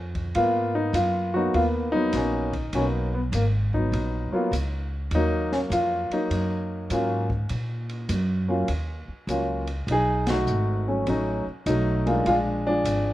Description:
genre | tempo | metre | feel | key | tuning
jazz piano trio | 101 BPM | 4/4 | swing 66% on 8ths | Eb minor | A4 = 440 Hz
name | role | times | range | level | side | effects
upright bass | bass | 0.0-13.1 s | Ab1 to Bb2 | -27 LUFS | equal | none
open jazz drum kit | drums | 0.1-13.0 s | hi-hat, kick drum, ride cymbal, snare drum | -37 LUFS | equal | none
warm baby grand piano | melody | 0.4-13.1 s | F3 to Ab4 | -24 LUFS | equal | none
room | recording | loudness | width
light reverb | worn, warbling old tape, cassette tape, warbly pitch drift | -22 LUFS | side -15 dB against mid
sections
0.0-13.1 A section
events
band accent 10.2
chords
0.3 Abm9; 5.1 Ebm9; 9.9 B7; 12.3 Bb7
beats
| 0.35 0.94 1.54 2.14 | 2.73 3.33 3.92 4.52 | 5.12 5.71 6.31 6.90 | 7.50 8.09 8.69 9.28 | 9.88 10.48 11.07 11.67 | 12.26 12.86

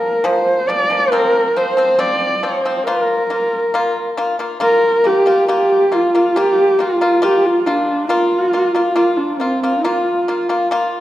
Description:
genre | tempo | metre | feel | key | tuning
mongolian traditional, Mongolian folk | 69 BPM | 4/4 | straight | Bb gong mode | A4 = 440 Hz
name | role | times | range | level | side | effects
dark horsehead fiddle | melody | 0.0-10.7 s | C4 to D5 | -15 LUFS | right 1 dB | none
pipa | arpeggios | 0.0-11.0 s | Bb2 to F4 | -19 LUFS | left 2 dB | none
room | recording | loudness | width
wet recital hall reverb, RT60 1.7 s | none | -13 LUFS | side -14 dB against mid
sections
0.0-4.6 A section; 4.6-11.0 B section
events
none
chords
0.0 Bb5; 1.1 F5; 2.9 Bb5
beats
0.24 | 1.12 1.99 2.87 3.74 | 4.61 5.49 6.36 7.23 | 8.10 8.98 9.85 10.72

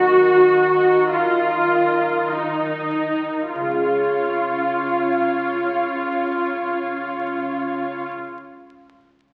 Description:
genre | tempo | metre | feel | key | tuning
cinematic | free time | none | none | Db major | A4 = 440 Hz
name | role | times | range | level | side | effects
muted symphonic violin section | second line | 0.0-8.1 s | Bb4 to F5 | -31 LUFS | equal | none
muted symphonic viola section | accompaniment | 0.0-8.1 s | Eb4 to Gb4 | -21 LUFS | equal | none
concert harp | arpeggios | 0.0-8.4 s | Db3 to Db5 | -31 LUFS | equal | none
muted symphonic cello section | bass | 0.0-8.1 s | Db3 to Eb3 | -34 LUFS | equal | none
room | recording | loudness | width
wet recital hall reverb, RT60 1.4 s | very old 78 rpm record, vinyl crackle | -20 LUFS | mono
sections
0.0-3.5 A section; 3.5-8.3 B section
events
slowing down 0.0-3.5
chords
0.0 Ebm; 3.5 Db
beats
free time

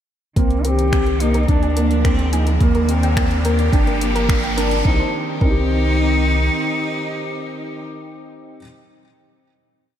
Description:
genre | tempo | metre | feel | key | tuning
piano and strings electronica | 107 BPM | 4/4 | straight | C minor | A4 = 443 Hz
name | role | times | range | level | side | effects
clear cello | melody | 0.4-7.9 s | Bb3 to G4 | -24 LUFS | equal | low-pass filter, ping-pong delay
bright string quartet | sustained chords | 0.4-7.9 s | Eb3 to Bb4 | -28 LUFS | equal | sidechain pumping, low-pass filter
soft round pluck | arpeggios | 0.4-5.6 s | Bb4 to Ab5 | -28 LUFS | equal | chorus, sidechain pumping, ping-pong delay
felt-muted upright piano | riff | 0.4-8.6 s | Bb3 to C5 | -23 LUFS | equal | lush chorus, ping-pong delay
round analog bass | bass | 0.4-6.5 s | G1 to Eb2 | -19 LUFS | equal | sidechain pumping
deep house drum kit | drums | 0.4-4.8 s | finger snaps, hi-hat | -30 LUFS | left 1 dB | high-pass filter on hats, high-pass filter on snare, high-pass filter on room
electronic kick drum | drums | 0.4-5.6 s | none | -18 LUFS | equal | none
riser | sound effects | 1.8-4.9 s | none | -31 LUFS | equal | none
room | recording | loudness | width
moderate lush hall reverb, RT60 2.7 s | dreamy mix soaked in reverb | -15 LUFS | side -10 dB against mid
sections
0.4-4.9 build; 4.9-7.1 final chord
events
build-up 0.4-4.9; filter sweep on string quartet 0.4-4.9; filter sweep on synth arpeggio sound 0.4-4.9; riser 1.8-4.9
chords
0.4 Cm7; 1.5 Bb7/D; 2.6 Ebmaj7; 3.7 Gm7; 4.9 Cm7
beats
| 0.37 0.93 1.49 2.05 | 2.61 3.17 3.73 4.29 | 4.86 5.42 5.98 6.54

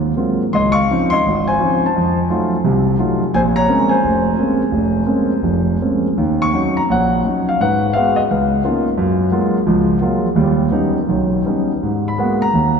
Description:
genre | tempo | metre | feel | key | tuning
solo jazz | 156-177 BPM | 4/4 | swing 64% on 8ths, rubato | Bb minor, Eb minor from 6.2 s | A4 = 439 Hz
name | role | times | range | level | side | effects
dark concert grand piano | solo | 0.0-12.8 s | F1 to Db6 | -14 LUFS | equal | none
room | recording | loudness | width
wet cathedral reverb, RT60 4.7 s | recorded in a church or concert hall | -14 LUFS | side -6 dB against mid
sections
0.0-6.2 A section; 6.2-12.8 B section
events
none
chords
0.0 Ab13; 0.5 Dbmaj9; 2.0 F7b9; 3.3 Bbm9; 6.2 Ebm7; 7.6 Abm7; 8.3 Db13; 9.0 Gbmaj9; 10.4 Ebaug7; 11.8 Abm9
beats
0.17 | 0.54 0.90 1.26 1.62 | 1.97 2.31 2.66 3.00 | 3.34 3.69 4.04 4.38 | 4.72 5.07 5.43 5.81 | 6.18 6.54 6.90 7.26 | 7.61 7.96 8.31 8.65 | 8.99 9.34 9.69 10.04 | 10.38 10.73 11.09 11.46 | 11.83 12.19 12.54

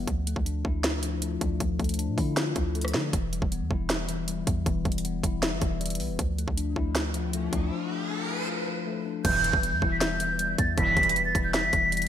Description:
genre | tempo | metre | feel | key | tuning
hip hop, trap | 157 BPM | 4/4 | half-time | E phrygian | A4 = 440 Hz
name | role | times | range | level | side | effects
mellow tine electric piano | accompaniment | 0.0-12.1 s | E3 to E5 | -32 LUFS | left 8 dB | phaser
warm 808-style bass | bass | 0.0-12.1 s | E1 to D3 | -31 LUFS | right 1 dB | none
trap drum kit | drums | 0.1-12.1 s | crash cymbal, hi-hat, kick drum, rim click, snare drum | -28 LUFS | right 1 dB | overdrive
riser | sound effects | 7.2-8.5 s | none | -35 LUFS | right 1 dB | none
mellow hollow concert flute | melody | 9.2-12.1 s | G6 to B6 | -24 LUFS | right 2 dB | none
resonant sweep polysynth | stabs | 9.2-11.0 s | B1 to E3 | -34 LUFS | right 3 dB | chorus, digital delay
room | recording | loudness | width
moderate lush hall reverb, RT60 1.7 s, digital ambience | bright 1980s-style digital production | -25 LUFS | side -10 dB against mid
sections
0.0-9.2 A section; 9.2-12.1 B section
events
riser 7.2-9.2; break 7.7-9.2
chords
0.1 Dmadd9; 3.1 Em; 6.2 Dmadd9; 9.2 Em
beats
| 0.08 0.46 0.84 1.22 | 1.60 1.99 2.37 2.75 | 3.13 3.52 3.90 4.28 | 4.66 5.04 5.43 5.81 | 6.19 6.57 6.96 7.34 | 7.72 8.10 8.48 8.87 | 9.25 9.63 10.01 10.39 | 10.78 11.16 11.54 11.92

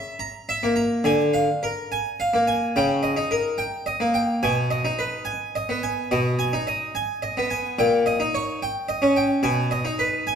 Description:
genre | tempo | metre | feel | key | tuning
classical, baroque-style suite movement for harpsichord | 72 BPM | 4/4 | rubato | G# minor | A4 = 441 Hz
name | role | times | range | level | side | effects
harpsichord | solo | 0.0-10.4 s | A#2 to A#5 | -21 LUFS | equal | none
room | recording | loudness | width
wet recital hall reverb, RT60 1.4 s | dark, warm production | -21 LUFS | side -7 dB against mid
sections
0.0-10.4 A section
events
none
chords
0.0 A#(b5, no3); 1.1 A#7/D; 2.8 D#7/C#; 4.4 G#m/B; 7.8 D#7/A#; 9.4 G#m/B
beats
0.20 | 1.07 1.92 2.76 3.60 | 4.44 5.29 6.12 6.95 | 7.78 8.60 9.42 10.26

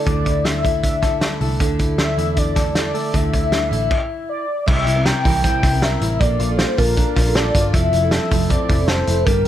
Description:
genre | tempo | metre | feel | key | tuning
jangly indie pop | 157 BPM | 4/4 | straight | unclear | A4 = 440 Hz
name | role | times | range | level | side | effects
warm velvety synth lead | melody | 0.0-9.5 s | Bb4 to G5 | -22 LUFS | left 2 dB | chorus, digital delay
picked steel-string acoustic guitar | accompaniment | 0.0-9.5 s | Bb2 to Bb4 | -26 LUFS | right 6 dB | none
direct-recorded clean electric guitar | arpeggios | 0.0-9.5 s | C3 to Bb4 | -25 LUFS | left 4 dB | none
vintage muted picked electric bass | bass | 0.1-9.5 s | F1 to E2 | -22 LUFS | equal | none
loose indie drum kit | drums | 0.1-9.5 s | crash cymbal, hi-hat, kick drum, snare drum | -20 LUFS | equal | none
room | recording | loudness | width
light reverb | none | -16 LUFS | side -11 dB against mid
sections
0.0-4.7 A section; 4.7-9.5 B section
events
stop 3.9-4.7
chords
0.0 Dsus2; 4.7 C7; 6.2 Bbmaj7; 7.7 Fmaj7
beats
| 0.07 0.45 0.84 1.22 | 1.60 1.99 2.37 2.76 | 3.14 3.52 3.91 4.29 | 4.68 5.06 5.44 5.82 | 6.21 6.59 6.97 7.35 | 7.74 8.12 8.50 8.88 | 9.27

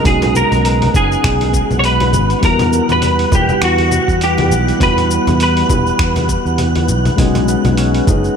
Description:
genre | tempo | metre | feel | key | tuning
sunset chillout | 101 BPM | 4/4 | swing 57% on 16ths | unclear | A4 = 439 Hz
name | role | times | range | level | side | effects
clean electric guitar | melody | 0.0-6.9 s | F#4 to C#5 | -16 LUFS | equal | ensemble chorus, tape echo
mellow FM electric piano | accompaniment | 0.0-8.4 s | G3 to B4 | -20 LUFS | moving between left 8 dB and right 6 dB | chorus, auto-pan, tape echo
lush unison pad | sustained chords | 0.0-8.4 s | C#3 to F#5 | -22 LUFS | equal | chorus
congas | percussion | 0.0-8.2 s | none | -25 LUFS | left 2 dB | none
wind-like tuned noise texture | texture | 0.0-8.4 s | F#5 to F#6 | -25 LUFS | right 3 dB | built-in reverb
fretless electric bass | bass | 0.1-8.3 s | E1 to E2 | -17 LUFS | right 1 dB | none
dusty soul sampler-style drum kit | drums | 0.1-8.3 s | cabasa, congas, finger snaps, hi-hat | -22 LUFS | left 2 dB | overdrive
electronic kick drum | drums | 0.1-8.2 s | none | -16 LUFS | right 1 dB | overdrive
concert harp | arpeggios | 7.2-8.4 s | G#3 to D#4 | -22 LUFS | left 3 dB | tape echo
room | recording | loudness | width
light reverb | none | -11 LUFS | side -7 dB against mid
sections
0.0-8.4 A section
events
none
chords
0.0 B69; 2.4 Emadd9; 7.2 B69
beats
| 0.05 0.65 1.24 1.84 | 2.43 3.02 3.62 4.21 | 4.81 5.40 5.99 6.59 | 7.18 7.78

